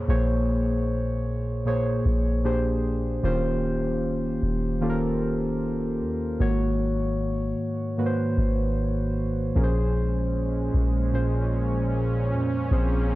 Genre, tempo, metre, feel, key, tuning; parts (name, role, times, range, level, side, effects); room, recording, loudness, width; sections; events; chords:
contemporary R&B; 76 BPM; 4/4; straight; Bb minor; A4 = 440 Hz
muted felt-like synth keys; accompaniment; 0.0-13.2 s; Ab2 to Db5; -25 LUFS; equal; chorus
soft 808-style bass; bass; 0.0-13.2 s; Eb1 to F2; -27 LUFS; equal
downlifter; sound effects; 0.0-3.2 s; -50 LUFS; left 1 dB
warm analog pad; sustained chords; 9.6-13.2 s; Bb2 to Db4; -28 LUFS; right 1 dB; chorus
little or no reverb; dry, gritty hardware recording, cassette tape; -23 LUFS; side -17 dB against mid
0.0-13.2 A section
0.0 Bbm9; 2.4 Bb13; 3.2 Eb13; 6.4 Ab7sus4; 9.6 Bbm9